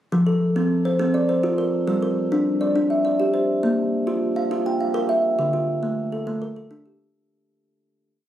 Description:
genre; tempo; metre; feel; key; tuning
southern african traditional, mbira-style interlocking cycle; 137 BPM (dotted quarters); 12/8; straight; F major; A4 = 441 Hz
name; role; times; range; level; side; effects
kalimba; solo; 0.1-7.3 s; D3 to G5; -19 LUFS; equal; none
room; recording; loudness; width
light reverb; recorded on a phone in the room, studio reverb, compression; -19 LUFS; side -11 dB against mid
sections
0.1-7.1 A section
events
fade-out 5.4-7.1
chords
0.1 F; 1.9 Gm; 3.6 Bb5; 5.4 Dm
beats
| 0.12 0.56 1.00 1.43 | 1.87 2.31 2.75 3.19 | 3.63 4.07 4.51 4.95 | 5.39 5.83 6.27 6.71

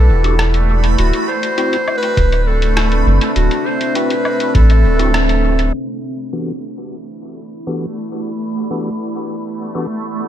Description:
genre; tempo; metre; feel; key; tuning
ambient dub; 101 BPM; 4/4; straight; E minor; A4 = 440 Hz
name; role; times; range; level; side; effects
clear clarinet; melody; 0.0-5.4 s; F#4 to C5; -21 LUFS; equal; dub echo
deep dark ambient pad; sustained chords; 0.0-10.3 s; C4 to A5; -23 LUFS; left 1 dB; chorus, built-in reverb
soft dub sub bass; bass; 0.0-5.7 s; D1 to B1; -13 LUFS; equal; none
backwards swelling texture; texture; 0.0-10.3 s; A3 to B5; -24 LUFS; right 2 dB; built-in reverb
percussive tonewheel organ; stabs; 0.2-9.9 s; E3 to A4; -26 LUFS; left 1 dB; fast rotary speaker, dub echo
lo-fi sampler-style drum kit; drums; 0.2-5.7 s; hi-hat, rim click, woodblock; -24 LUFS; left 1 dB; studio reverb, dub echo
electronic kick drum; drums; 2.2-4.7 s; none; -15 LUFS; equal; studio reverb
room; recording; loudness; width
light reverb, digital ambience; low-pass filter; -14 LUFS; side -11 dB against mid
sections
0.0-5.7 A section; 5.7-10.3 B section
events
band accent 5.1; filter sweep 5.7-10.3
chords
0.0 Em11; 1.0 D7; 5.7 Em11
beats
0.39 | 0.98 1.58 2.17 2.77 | 3.36 3.95 4.55 5.14 | 5.74 6.33 6.92 7.52 | 8.11 8.71 9.30 9.89

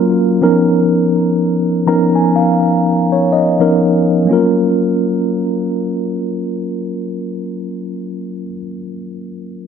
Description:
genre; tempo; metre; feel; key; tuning
R&B; 62 BPM; 4/4; swing 58% on 16ths; F# major; A4 = 439 Hz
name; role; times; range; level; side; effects
mellow tine electric piano; solo; 0.0-9.7 s; E#3 to A#5; -13 LUFS; equal; medium stereo tremolo, ping-pong delay
room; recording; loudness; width
light reverb; none; -12 LUFS; side -7 dB against mid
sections
0.0-4.3 A section; 4.3-8.2 B section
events
tine electric piano fill 1.4-4.3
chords
0.4 C#13; 4.3 F#maj7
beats
| 0.42 1.39 2.35 3.32 | 4.29 5.26 6.23 7.19

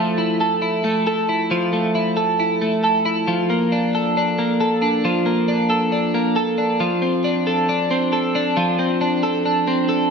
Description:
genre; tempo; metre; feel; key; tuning
dream pop; 68 BPM; 4/4; straight; unclear; A4 = 440 Hz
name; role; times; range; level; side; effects
twelve-string electric guitar; solo; 0.0-10.1 s; F3 to A4; -17 LUFS; equal; analog chorus, ping-pong delay
room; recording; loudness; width
wet recital hall reverb, RT60 1.6 s, digital ambience; none; -17 LUFS; side -5 dB against mid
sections
0.0-10.1 A section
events
none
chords
0.0 Fmaj7; 3.3 Bbmaj7; 6.8 F6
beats
0.63 1.51 2.39 | 3.27 4.16 5.04 5.92 | 6.80 7.68 8.57 9.45

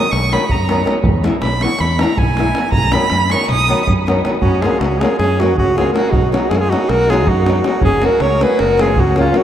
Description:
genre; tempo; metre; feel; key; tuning
balkan folk, Balkan wedding band; 318 BPM (eighths); 9/8; straight; B major, F# major from 4.4 s; A4 = 440 Hz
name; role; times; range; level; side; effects
rich violin; second line; 0.0-9.4 s; C#4 to D#6; -20 LUFS; right 2 dB; none
flamenco guitar; accompaniment; 0.0-9.4 s; D#3 to F#4; -20 LUFS; left 1 dB; none
fingered electric bass; bass; 0.1-9.3 s; F#1 to F#2; -18 LUFS; equal; none
davul; percussion; 0.1-9.4 s; none; -19 LUFS; equal; none
warm alto saxophone; melody; 4.4-9.4 s; E#4 to C#5; -16 LUFS; right 1 dB; none
room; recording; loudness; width
wet cathedral reverb, RT60 6.8 s; in a vast, echoing space; -12 LUFS; side -10 dB against mid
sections
0.0-4.4 A section; 4.4-9.4 B section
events
violin solo 0.0-4.4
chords
0.0 B; 1.0 E; 2.7 B; 4.4 F#; 6.1 B; 7.8 F#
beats
0.10 0.29 0.48 0.67 0.85 | 1.04 1.23 1.42 1.60 1.79 1.98 2.17 2.35 2.54 | 2.73 2.92 3.11 3.29 3.48 3.67 3.86 4.05 4.23 | 4.42 4.61 4.80 4.99 5.18 5.36 5.55 5.74 5.93 | 6.12 6.31 6.50 6.68 6.87 7.06 7.25 7.44 7.63 | 7.82 8.01 8.20 8.39 8.57 8.76 8.95 9.14 9.33

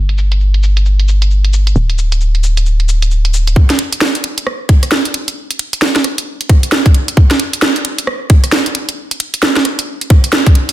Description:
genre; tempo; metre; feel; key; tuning
UK garage, two-step garage; 133 BPM; 4/4; swing 61% on 16ths; unclear; A4 = 440 Hz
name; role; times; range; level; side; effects
hollow knocking FM bass; bass; 0.0-3.5 s; D1 to G1; -11 LUFS; equal; none
garage drum kit; drums; 0.1-10.7 s; cabasa, hi-hat, rim click, snare drum; -14 LUFS; right 2 dB; overdrive, low-pass filter on hats, studio reverb, low-pass filter on perc, low-pass filter on snare
electronic kick drum; drums; 3.6-10.5 s; none; -7 LUFS; equal; overdrive, studio reverb
room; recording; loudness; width
light reverb; dense, heavily limited modern master, low-pass filter; -10 LUFS; side -14 dB against mid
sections
0.0-3.6 A section; 3.6-10.7 B section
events
filter sweep 0.0-3.6; build-up 3.6-10.7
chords
none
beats
0.40 0.85 1.31 | 1.76 2.21 2.66 3.11 | 3.56 4.01 4.46 4.92 | 5.37 5.82 6.27 6.72 | 7.17 7.62 8.07 8.52 | 8.97 9.43 9.88 10.33

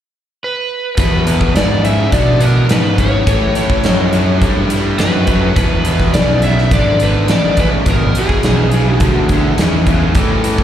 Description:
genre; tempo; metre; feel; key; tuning
blues rock power trio and southern rock; 105 BPM; 4/4; straight; E mixolydian; A4 = 440 Hz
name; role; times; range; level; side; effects
overdriven slide guitar; melody; 0.4-9.3 s; G#4 to E5; -19 LUFS; equal; slapback echo
bright tonewheel organ; sustained chords; 1.0-10.6 s; G3 to C5; -28 LUFS; right 5 dB; none
distorted electric guitar; riff; 1.0-10.6 s; E2 to G3; -18 LUFS; equal; overdrive, slapback echo
fuzz fingered electric bass; bass; 1.0-10.6 s; G#1 to B2; -15 LUFS; equal; overdrive
big rock drum kit; drums; 1.0-10.6 s; hi-hat, kick drum, snare drum; -16 LUFS; equal; none
room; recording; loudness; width
little or no reverb; live gig heard through the venue's PA, recital hall reverb; -11 LUFS; side -10 dB against mid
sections
1.0-10.6 A section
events
none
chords
0.0 N.C.; 1.0 E7; 3.3 A7; 5.6 E7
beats
0.41 | 0.98 1.56 2.13 2.71 | 3.28 3.85 4.43 5.00 | 5.57 6.15 6.72 7.29 | 7.87 8.44 9.01 9.59 | 10.16

